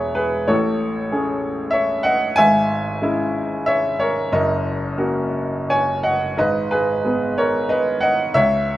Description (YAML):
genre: classical, lyrical solo piano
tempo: 84-96 BPM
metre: 3/4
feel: rubato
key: unclear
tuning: A4 = 443 Hz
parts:
  - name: clear upright piano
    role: solo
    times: 0.0-8.8 s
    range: E1 to G#5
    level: -17 LUFS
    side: equal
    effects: none
room: little or no reverb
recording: close, detailed microphones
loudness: -17 LUFS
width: side -14 dB against mid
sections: 0.0-8.8 A section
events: none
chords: 0.5 Amaj7; 2.4 E6/G#; 4.3 F#; 6.4 G#madd9